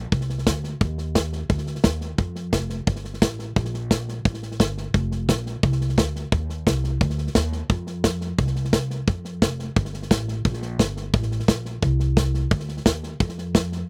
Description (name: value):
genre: honky-tonk and classic country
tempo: 174 BPM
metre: 4/4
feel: straight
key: unclear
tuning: A4 = 441 Hz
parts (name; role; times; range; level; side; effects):
- upright bass; bass; 0.0-13.8 s; F1 to F2; -28 LUFS; equal; none
- natural country drum kit; drums; 0.1-13.8 s; hi-hat, kick drum, snare drum; -24 LUFS; equal; none
room: little or no reverb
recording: recorded outdoors, with no room sound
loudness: -24 LUFS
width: mono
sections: 0.0-13.9 A section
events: none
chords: none